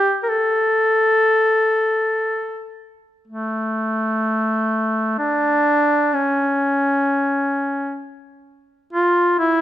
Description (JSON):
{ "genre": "caucasian folk", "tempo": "free time", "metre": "none", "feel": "none", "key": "unclear", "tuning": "A4 = 439 Hz", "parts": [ { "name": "clear duduk", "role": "solo", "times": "0.0-9.6 s", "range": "A3 to Bb4", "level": "-17 LUFS", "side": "equal", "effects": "none" } ], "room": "moderate scoring stage reverb, RT60 1.9 s", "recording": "minimal, uncompressed stereo recording", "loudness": "-16 LUFS", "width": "side -12 dB against mid", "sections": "0.0-3.2 A section; 3.2-9.6 B section", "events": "none", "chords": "none" }